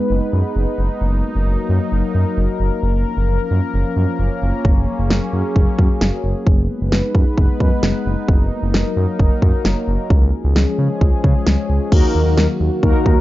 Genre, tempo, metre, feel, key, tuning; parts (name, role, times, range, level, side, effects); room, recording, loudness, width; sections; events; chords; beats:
synth-pop; 132 BPM; 4/4; straight; A4 = 440 Hz
sweeping resonant pad; sustained chords; 0.0-13.2 s; D#3 to B4; -21 LUFS; left 2 dB; chorus
smooth synth bass; bass; 0.1-13.2 s; F#1 to C#3; -18 LUFS; equal
pop drum kit; drums; 4.6-13.2 s; crash cymbal, kick drum, snare drum; -15 LUFS; equal
mellow synth brass; accompaniment; 11.9-13.2 s; A#3 to A#4; -19 LUFS; left 2 dB; chorus
little or no reverb; dark, warm production, nothing above 7.5 kHz; -14 LUFS; side -16 dB against mid
0.0-11.9 A section; 11.9-13.2 B section
0.0 G#m/F#; 1.0 D#m/F#; 2.8 A#m/F#; 4.6 F#add9; 6.5 G#m/F#; 8.3 D#m/F#; 10.1 C#; 11.9 D#m
0.10 0.56 | 1.01 1.47 1.92 2.38 | 2.83 3.29 3.74 4.19 | 4.65 5.10 5.56 6.01 | 6.47 6.92 7.38 7.83 | 8.29 8.74 9.19 9.65 | 10.10 10.56 11.01 11.47 | 11.92 12.38 12.83